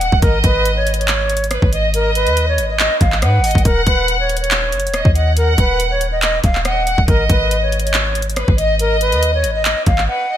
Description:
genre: hip hop, trap.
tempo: 140 BPM.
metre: 4/4.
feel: half-time.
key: unclear.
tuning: A4 = 442 Hz.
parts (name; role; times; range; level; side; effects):
breathy mellow silver concert flute; melody; 0.0-10.4 s; Bb4 to Gb5; -19 LUFS; equal; low-pass filter, ping-pong delay.
rich studio violin section; second line; 0.0-10.4 s; Cb5 to Gb5; -21 LUFS; right 1 dB; none.
warm 808-style bass; bass; 0.0-10.1 s; Eb1 to Ab2; -18 LUFS; equal; none.
trap drum kit; drums; 0.0-10.1 s; handclaps, hi-hat, kick drum, rim click; -18 LUFS; equal; overdrive, gated reverb.
room: light reverb.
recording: bright 1980s-style digital production.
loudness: -13 LUFS.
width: side -11 dB against mid.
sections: 0.0-10.4 A section.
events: break 10.1.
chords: 0.2 Ab5; 3.7 Ebm; 7.1 Ab5.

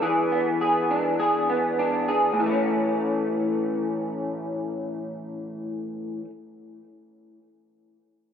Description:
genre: indie pop.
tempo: 102 BPM.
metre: 4/4.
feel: swing 55% on 16ths.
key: A major.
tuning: A4 = 440 Hz.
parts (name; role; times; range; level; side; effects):
electric guitar through a small old amp; solo; 0.0-6.3 s; A2 to G#4; -23 LUFS; equal; analog chorus, vibrato effect, analog delay.
room: moderate studio ambience, RT60 0.5 s.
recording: rough home demo mix.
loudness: -23 LUFS.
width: side -8 dB against mid.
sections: 0.0-2.4 A section; 2.4-4.7 B section.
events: none.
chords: 0.0 E7; 2.4 A.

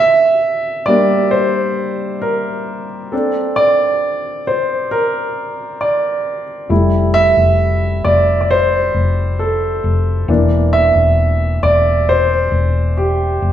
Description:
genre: pop.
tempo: 67 BPM.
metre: 4/4.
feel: straight.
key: F major.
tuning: A4 = 440 Hz.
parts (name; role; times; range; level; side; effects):
warm concert grand piano; accompaniment; 0.0-13.5 s; E3 to E5; -14 LUFS; right 1 dB; none.
hollow-body short-scale fingered electric bass; bass; 6.7-13.5 s; E1 to F1; -16 LUFS; left 1 dB; none.
room: wet recital hall reverb, RT60 1.6 s.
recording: recorded in a church or concert hall.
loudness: -13 LUFS.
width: side -10 dB against mid.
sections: 0.0-13.5 A section.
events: grand piano solo 0.0-13.5.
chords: 0.0 Gm; 3.1 Bbmaj7; 6.7 Fmaj7; 10.3 C7/E.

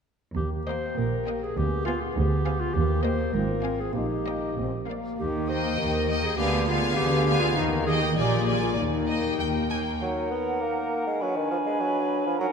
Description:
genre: quick classical-period movement for symphony orchestra.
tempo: 101 BPM.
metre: 2/4.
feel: rubato.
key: Eb major.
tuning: A4 = 439 Hz.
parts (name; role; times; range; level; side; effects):
warm clarinet; second line; 0.4-12.5 s; D4 to C5; -30 LUFS; left 1 dB; none.
warm French horn section; sustained chords; 0.4-9.7 s; Bb3 to Ab4; -33 LUFS; left 5 dB; none.
rich chamber double bass section; bass; 0.4-9.9 s; Ab1 to Eb2; -30 LUFS; right 4 dB; none.
warm chamber cello section; bass; 0.4-9.9 s; D2 to Eb3; -31 LUFS; right 1 dB; none.
warm symphonic violin section; melody; 0.7-10.0 s; F5 to Ab5; -36 LUFS; left 2 dB; none.
rich chamber violin section; second line; 0.7-9.8 s; D5 to Ab5; -33 LUFS; left 1 dB; none.
warm studio viola section; accompaniment; 0.7-10.0 s; Bb3 to C4; -34 LUFS; equal; none.
mellow cor anglais; second line; 10.0-12.5 s; Bb4 to B4; -33 LUFS; right 3 dB; none.
mellow silver concert flute; second line; 10.0-12.5 s; Gb5 to G#5; -32 LUFS; left 2 dB; none.
clear bassoon; accompaniment; 10.0-12.5 s; Eb3 to Cb4; -28 LUFS; right 1 dB; none.
room: wet concert hall reverb, RT60 2.5 s.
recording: none.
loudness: -24 LUFS.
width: side -6 dB against mid.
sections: 0.4-10.0 A section; 10.0-12.5 B section.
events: none.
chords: 0.4 Eb; 1.6 Ddim7; 2.8 Eb; 3.3 Fm/Ab; 4.0 Eb/Bb; 4.6 Bb; 5.2 Eb; 6.4 Ddim7; 7.6 Eb; 8.2 Bb7; 8.8 Eb; 10.0 Ebm/Gb; 11.2 Bm6.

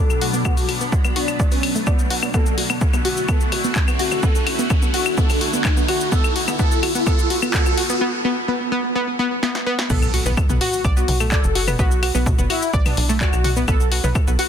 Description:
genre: melodic techno.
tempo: 127 BPM.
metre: 4/4.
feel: straight.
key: B minor.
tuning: A4 = 440 Hz.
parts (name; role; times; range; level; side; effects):
analog synth brass; melody; 0.0-14.5 s; B3 to A4; -27 LUFS; left 2 dB; chorus, sidechain pumping, ping-pong delay.
evolving wavetable pad; sustained chords; 0.0-8.0 s; B2 to F#4; -27 LUFS; equal; phaser, built-in reverb, sidechain pumping.
analog pluck; arpeggios; 0.0-14.4 s; A3 to D6; -24 LUFS; equal; chorus, cassette tape, sidechain pumping, tape echo.
riser and impact; sound effects; 0.0-11.8 s; none; -27 LUFS; equal; none.
punchy analog drum machine; drums; 0.1-14.5 s; claves, crash cymbal, handclaps, hi-hat, shaker, snare drum, toms; -24 LUFS; left 3 dB; overdrive, high-pass filter on perc, high-pass filter on hats, high-pass filter on toms, high-pass filter on snare, high-pass filter on cymbals.
electronic kick drum; drums; 0.5-14.2 s; none; -19 LUFS; equal; overdrive.
tight sequencer bass; bass; 9.9-14.4 s; F#1 to B1; -22 LUFS; equal; sidechain pumping.
room: light reverb, digital ambience.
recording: dense, heavily limited modern master.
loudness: -16 LUFS.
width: side -8 dB against mid.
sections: 0.0-9.9 A section; 9.9-14.5 B section.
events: build-up 0.0-9.9; riser 0.0-8.0; filter sweep on synth pluck 0.0-9.9; filter sweep on analog polysynth 0.0-9.9; break 8.0-9.9; drum fill 9.4-9.9; drop 9.9-14.5; impact 9.9-11.8.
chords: 0.0 Bm; 2.3 D6; 9.9 Bm.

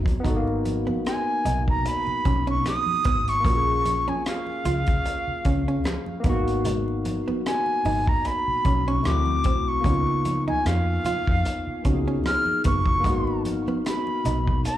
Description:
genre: R&B, neo-soul.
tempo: 75 BPM.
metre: 4/4.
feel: swing 55% on 16ths.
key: G# dorian.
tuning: A4 = 440 Hz.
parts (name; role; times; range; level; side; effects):
barky tine electric piano; accompaniment; 0.0-14.8 s; A3 to A4; -28 LUFS; left 2 dB; overdrive, analog chorus, slapback echo.
vintage muted fingered electric bass; bass; 0.0-14.6 s; F#1 to E#2; -26 LUFS; equal; none.
crunchy breakbeat drum kit; drums; 0.1-14.8 s; hi-hat, kick drum, rim click; -26 LUFS; equal; none.
congas; percussion; 0.2-14.8 s; none; -36 LUFS; right 2 dB; slapback echo.
hollow-body jazz guitar; second line; 0.3-14.7 s; G#3 to E#4; -32 LUFS; right 3 dB; slapback echo.
reedy silver concert flute; melody; 1.1-14.8 s; E#5 to E#6; -26 LUFS; equal; slapback echo.
room: studio reverb.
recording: live gig heard through the venue's PA, club reverb.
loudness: -21 LUFS.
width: side -12 dB against mid.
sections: 0.2-14.8 A section.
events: none.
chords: 0.2 G#m9; 3.4 A#m7; 6.2 G#m9; 9.0 D9; 9.8 C#13; 13.0 G#m9.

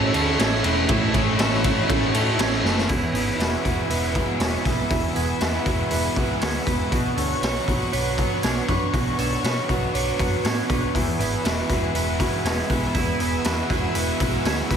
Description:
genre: rock, shoegaze and dream pop.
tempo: 119 BPM.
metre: 4/4.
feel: straight.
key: E mixolydian.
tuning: A4 = 438 Hz.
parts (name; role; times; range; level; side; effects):
string machine, cellos; sustained chords; 0.0-14.8 s; B4 to E6; -31 LUFS; left 1 dB; ensemble chorus.
twangy electric guitar; arpeggios; 0.0-14.8 s; E4 to C#5; -32 LUFS; right 9 dB; wide subtle chorus, tape echo.
biting overdriven guitar; riff; 0.0-14.8 s; E2 to C#5; -28 LUFS; left 11 dB; lush chorus.
distorted electric guitar; riff; 0.0-2.9 s; A2 to A3; -28 LUFS; left 2 dB; overdrive.
overdriven semi-hollow guitar; riff; 0.0-14.8 s; E2 to C#5; -27 LUFS; right 10 dB; reverse reverb.
hollow-body short-scale picked electric bass; bass; 0.0-14.8 s; E1 to B2; -28 LUFS; left 1 dB; none.
raw garage drum kit; drums; 0.1-14.8 s; hi-hat, kick drum, ride cymbal, snare drum; -24 LUFS; left 1 dB; none.
room: light reverb, small room reverb.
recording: none.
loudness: -20 LUFS.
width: side -7 dB against mid.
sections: 0.0-2.9 A section; 2.9-14.8 B section.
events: drum fill 2.6.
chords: 0.0 A; 2.9 Eadd9; 6.9 Bmadd9; 10.9 Eadd9.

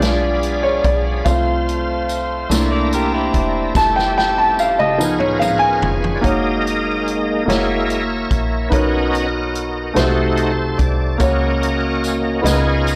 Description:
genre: slow gospel.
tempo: 48 BPM (dotted quarters).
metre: 6/8.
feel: straight.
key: F# major from 6.2 s.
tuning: A4 = 435 Hz.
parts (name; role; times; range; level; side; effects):
warm grand piano; accompaniment; 0.0-13.0 s; B2 to A5; -20 LUFS; equal; none.
bright tonewheel organ; sustained chords; 0.0-13.0 s; G#3 to C6; -25 LUFS; equal; slow rotary speaker, overdrive, chorus vibrato.
muted French horn section; sustained chords; 0.0-6.2 s; F3 to C5; -30 LUFS; equal; none.
woody FM bass; bass; 0.0-13.0 s; E1 to Db2; -25 LUFS; equal; none.
swinging big-band drum kit; drums; 0.0-13.0 s; hi-hat, kick drum, snare drum, toms; -25 LUFS; equal; none.
tambourine; percussion; 1.3-5.8, 11.2-13.0 s; none; -34 LUFS; equal; none.
clean electric guitar; second line; 2.7-3.7 s; E4 to D5; -24 LUFS; equal; none.
room: light reverb.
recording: blown-out, overdriven recording, overdrive.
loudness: -17 LUFS.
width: mono.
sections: 0.0-6.2 A section; 6.2-13.0 B section.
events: grand piano solo 0.0-6.2; drum fill 3.7-6.2; tonewheel organ solo 6.2-13.0.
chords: 0.0 Bdim7; 1.3 F/C; 2.5 C13; 3.7 Fmaj9; 5.0 Db7; 6.2 F#6; 7.5 F#7; 8.7 Bmaj9; 10.0 Cdim7; 11.2 F#/C#.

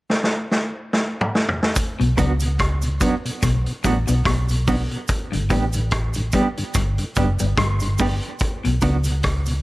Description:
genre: roots reggae.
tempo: 72 BPM.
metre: 4/4.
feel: swing 56% on 16ths.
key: B minor.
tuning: A4 = 440 Hz.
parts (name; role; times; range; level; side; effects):
vintage drum kit; drums; 0.1-9.6 s; hi-hat, kick drum, rim click, snare drum, toms; -22 LUFS; equal; none.
cabasa; percussion; 1.8-9.6 s; none; -32 LUFS; right 4 dB; none.
mellow tonewheel organ; accompaniment; 2.0-9.5 s; G2 to D4; -28 LUFS; left 1 dB; slow rotary speaker.
electric guitar at the edge of break-up; riff; 2.0-9.1 s; F#2 to C#3; -26 LUFS; left 3 dB; none.
vintage muted fingered electric bass; bass; 2.0-9.6 s; F#1 to C#2; -21 LUFS; equal; none.
mellow electric guitar; accompaniment; 2.2-9.0 s; F#3 to G4; -25 LUFS; right 3 dB; tremolo, tape echo.
room: light reverb, small room ambience.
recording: lossy compression artefacts.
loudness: -18 LUFS.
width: side -19 dB against mid.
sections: 0.0-1.8 A section; 1.8-9.6 B section.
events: drum fill 0.1-1.8.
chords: 0.0 N.C.; 1.8 Bm; 5.1 G; 8.4 Bm.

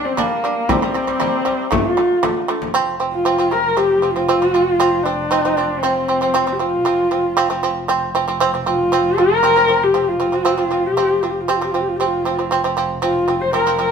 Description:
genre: mongolian traditional, Mongolian folk.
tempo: 117 BPM.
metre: 4/4.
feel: straight.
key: F zhi mode.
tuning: A4 = 441 Hz.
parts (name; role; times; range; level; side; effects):
dark horsehead fiddle; melody; 0.0-13.9 s; Bb3 to C5; -17 LUFS; left 1 dB; none.
shamisen; arpeggios; 0.0-13.9 s; C3 to D4; -19 LUFS; right 4 dB; none.
frame drum; percussion; 0.2-2.7 s; none; -23 LUFS; left 3 dB; none.
dark double bass; drone; 2.8-13.9 s; F1; -31 LUFS; equal; none.
room: moderate stone room reverb, RT60 1.1 s.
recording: band playing live in one room.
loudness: -15 LUFS.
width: side -6 dB against mid.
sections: 0.0-2.7 A section; 2.7-13.9 B section.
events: none.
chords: 0.0 G5; 0.7 C5; 1.7 D5; 2.7 F5.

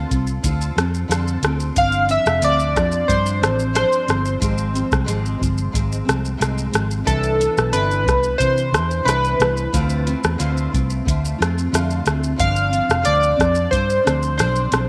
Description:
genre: indie pop, bedroom pop.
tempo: 90 BPM.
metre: 4/4.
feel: straight.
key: unclear.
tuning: A4 = 440 Hz.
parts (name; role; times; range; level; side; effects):
picked steel-string acoustic guitar; accompaniment; 0.0-14.9 s; G2 to A4; -28 LUFS; equal; ensemble chorus, warbly pitch drift.
vintage muted fingered electric bass; bass; 0.0-14.9 s; F1 to C3; -24 LUFS; equal; none.
soft vintage rhythm box; drums; 0.1-14.9 s; hi-hat, kick drum, rim click, shaker; -25 LUFS; equal; none.
chorused retro synth keys; melody; 1.8-14.8 s; A4 to F5; -22 LUFS; equal; subtle chorus, tape echo.
room: light reverb, digital ambience.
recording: none.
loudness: -19 LUFS.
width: mono.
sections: 0.0-14.9 A section.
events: none.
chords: 0.0 Dm7; 1.8 G7sus4; 4.4 Fm; 7.1 Cmaj9; 9.7 Dm7; 12.4 G7sus4.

